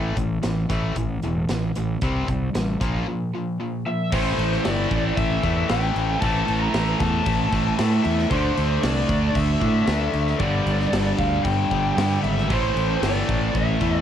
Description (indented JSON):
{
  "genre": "hard rock",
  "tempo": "115 BPM",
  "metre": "4/4",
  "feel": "straight",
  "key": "A phrygian",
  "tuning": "A4 = 440 Hz",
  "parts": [
    { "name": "distorted electric guitar", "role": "riff", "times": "0.0-14.0 s", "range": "G2 to D4", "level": "-28 LUFS", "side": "left 7 dB", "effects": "overdrive, cassette tape" },
    { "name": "overdriven electric guitar", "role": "riff", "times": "0.0-14.0 s", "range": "G2 to D4", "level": "-29 LUFS", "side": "right 8 dB", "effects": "cassette tape" },
    { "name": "fuzz fingered electric bass", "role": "bass", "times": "0.0-14.0 s", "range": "E1 to A2", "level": "-24 LUFS", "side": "equal", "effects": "overdrive" },
    { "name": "big rock drum kit", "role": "drums", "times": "0.2-13.9 s", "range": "crash cymbal, hi-hat, kick drum, snare drum", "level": "-28 LUFS", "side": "equal", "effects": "cassette tape" },
    { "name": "lead guitar through a small cranked amp", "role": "melody", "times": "3.9-14.0 s", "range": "C5 to Bb5", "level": "-26 LUFS", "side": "left 1 dB", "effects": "overdrive, cassette tape" },
    { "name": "tonewheel organ", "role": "sustained chords", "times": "4.1-14.0 s", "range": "none", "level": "barely audible", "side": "none", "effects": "none" },
    { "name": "distorted electric guitar", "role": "riff", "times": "4.1-14.0 s", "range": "G2 to D4", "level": "-28 LUFS", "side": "equal", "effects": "overdrive, cassette tape" }
  ],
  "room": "light reverb",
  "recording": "home recording on cassette",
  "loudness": "-20 LUFS",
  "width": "side -9 dB against mid",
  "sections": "0.0-4.1 A section; 4.1-14.0 B section",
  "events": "break 3.1-4.1",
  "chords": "0.0 A5; 2.0 C5; 2.8 Bb5; 4.1 Am; 8.3 D5; 10.4 G5; 12.5 Am"
}